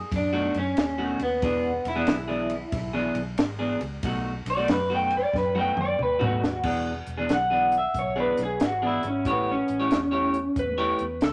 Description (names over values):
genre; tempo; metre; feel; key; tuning
electric blues shuffle; 92 BPM; 4/4; swing 65% on 8ths; E mixolydian; A4 = 439 Hz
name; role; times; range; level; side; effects
electric guitar through a small old amp; melody; 0.0-10.8 s; B3 to G5; -28 LUFS; equal; spring reverb
vintage muted fingered electric bass; bass; 0.0-11.3 s; E1 to F#2; -37 LUFS; equal; none
compact cocktail drum kit; drums; 0.1-11.3 s; crash cymbal, hi-hat, kick drum, ride cymbal, snare drum, toms; -31 LUFS; equal; none
semi-hollow electric guitar; riff; 0.3-11.3 s; B2 to C#5; -31 LUFS; equal; none
electric slide guitar; second line; 10.6-11.3 s; A4 to B4; -32 LUFS; equal; none
room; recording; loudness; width
light reverb; none; -26 LUFS; mono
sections
0.0-6.6 A section; 6.6-11.3 B section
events
clean electric guitar solo 0.0-6.6; drum fill 5.3-6.6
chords
0.0 B7; 1.4 E7; 4.0 B7; 6.6 E7; 9.3 A7